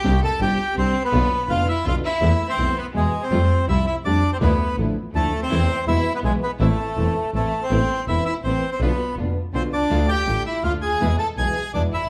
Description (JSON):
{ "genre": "tango", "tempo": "164 BPM", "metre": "3/4", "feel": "rubato", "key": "A minor", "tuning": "A4 = 440 Hz", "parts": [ { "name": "bandoneon", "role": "melody", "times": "0.0-12.1 s", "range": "G#3 to A5", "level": "-26 LUFS", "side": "equal", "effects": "none" }, { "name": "rich studio violin section", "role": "second line", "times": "0.0-12.1 s", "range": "G#3 to A4", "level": "-32 LUFS", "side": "equal", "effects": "none" }, { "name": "nylon-string guitar", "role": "accompaniment", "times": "0.0-11.9 s", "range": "B2 to G4", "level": "-29 LUFS", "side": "equal", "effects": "none" }, { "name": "dark chamber string section", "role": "stabs", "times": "0.0-11.9 s", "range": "F3 to A4", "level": "-36 LUFS", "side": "equal", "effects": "none" }, { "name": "clear double bass", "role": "bass", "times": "0.0-12.1 s", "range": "E1 to F2", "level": "-25 LUFS", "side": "equal", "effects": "none" } ], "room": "wet large studio reverb, RT60 1.1 s", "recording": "heard from further back in the room", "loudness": "-21 LUFS", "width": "mono", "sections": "0.0-7.7 A section; 7.7-12.1 B section", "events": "none", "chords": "0.0 Csus2; 1.1 Bdim; 2.2 Esus4; 3.0 E; 3.3 Fadd9; 4.4 Dmadd9; 5.5 Am/E; 5.9 E; 6.6 Am; 7.7 Amadd9; 8.8 Bdim; 9.9 Dm; 11.0 E", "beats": "| 0.04 0.41 0.77 | 1.13 1.49 1.85 | 2.22 2.58 2.95 | 3.32 3.69 4.05 | 4.42 4.78 5.14 | 5.51 5.87 6.24 | 6.60 6.97 7.34 | 7.71 8.08 8.45 | 8.81 9.18 9.54 | 9.90 10.27 10.63 | 11.00 11.37 11.74" }